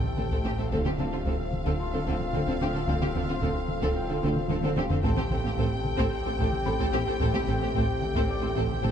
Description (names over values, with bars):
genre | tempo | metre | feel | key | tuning
cinematic, hybrid orchestral and electronic film score | 111 BPM | 4/4 | straight | A minor | A4 = 441 Hz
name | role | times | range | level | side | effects
warm symphonic violin section | melody | 0.0-8.9 s | F5 to G5 | -36 LUFS | left 3 dB | none
mellow French horn section | sustained chords | 0.0-8.9 s | C4 to G4 | -35 LUFS | left 3 dB | none
overtone-sweeping drone | sustained chords | 0.0-8.9 s | A3 to A4 | -38 LUFS | right 2 dB | chorus, built-in reverb
snarling distorted saw bass | bass | 0.0-8.9 s | D1 to A1 | -35 LUFS | equal | distortion
taiko ensemble | drums | 0.0-8.9 s | none | -31 LUFS | equal | none
clear baby grand piano | texture | 0.0-8.9 s | D5 to D6 | -44 LUFS | left 2 dB | none
rich symphonic violin section | second line | 0.2-8.9 s | F4 to A4 | -35 LUFS | equal | none
dark symphonic viola section | accompaniment | 0.2-8.9 s | C4 | -35 LUFS | equal | none
clear symphonic cello section | bass | 0.2-8.9 s | A2 to D3 | -33 LUFS | right 2 dB | none
rich symphonic double bass section | bass | 0.2-8.9 s | A1 to D2 | -33 LUFS | right 2 dB | none
room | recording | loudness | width
moderate scoring stage reverb, RT60 1.8 s | dark, warm production | -25 LUFS | side -8 dB against mid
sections
0.0-8.9 A section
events
drum fill 4.5-5.0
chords
0.0 Am7; 0.7 Dm7; 5.0 Am7